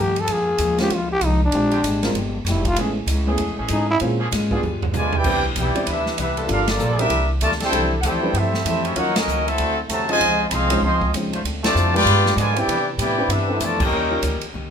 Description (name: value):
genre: jazz, big band swing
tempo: 194 BPM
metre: 4/4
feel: swing 62% on 8ths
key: C major from 5.2 s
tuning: A4 = 440 Hz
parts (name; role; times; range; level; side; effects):
- growling trombone; melody; 0.0-4.0 s; D4 to A4; -21 LUFS; left 1 dB; none
- picked steel-string acoustic guitar; accompaniment; 0.0-14.7 s; F2 to A4; -29 LUFS; left 3 dB; none
- upright bass; bass; 0.0-14.7 s; F1 to C3; -24 LUFS; equal; none
- swinging big-band drum kit; drums; 0.2-14.5 s; crash cymbal, hi-hat, kick drum, ride cymbal, snare drum, toms; -27 LUFS; right 1 dB; none
- bright trombone section; sustained chords; 0.3-14.4 s; C3 to Db5; -30 LUFS; right 1 dB; none
- dark upright piano; accompaniment; 0.8-14.2 s; Gb3 to D5; -26 LUFS; equal; none
- clear trumpet section; melody; 5.0-14.2 s; Bb3 to C6; -21 LUFS; left 1 dB; none
- bright trombone section; second line; 5.0-14.2 s; C3 to G4; -27 LUFS; right 2 dB; none
room: moderate large studio reverb, RT60 0.9 s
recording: minimal, uncompressed stereo recording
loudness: -18 LUFS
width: side -7 dB against mid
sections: 0.0-5.2 A section; 5.2-14.7 B section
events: trombone solo 0.0-5.2; drum fill 4.6-5.2, 14.5; band accent 6.6, 9.1, 11.6, 13.8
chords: 0.3 Bbm7; 1.5 Bb13; 2.8 Amaj7; 4.0 Bbm7; 4.6 G7b9; 5.2 Cmaj9; 6.5 Gm9; 7.1 C9; 7.7 Fmaj13; 9.0 Ebm7; 9.6 D9; 10.2 Dbmaj9; 11.4 Dm7; 12.1 G7b9; 12.7 Cmaj9; 13.9 Eb7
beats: | 0.28 0.59 0.90 1.21 | 1.52 1.83 2.14 2.45 | 2.76 3.08 3.38 3.69 | 4.00 4.32 4.62 4.93 | 5.25 5.55 5.87 6.17 | 6.49 6.79 7.10 7.41 | 7.72 8.03 8.34 8.65 | 8.96 9.27 9.58 9.89 | 10.20 10.51 10.82 11.13 | 11.44 11.75 12.06 12.37 | 12.68 12.99 13.30 13.61 | 13.92 14.23 14.54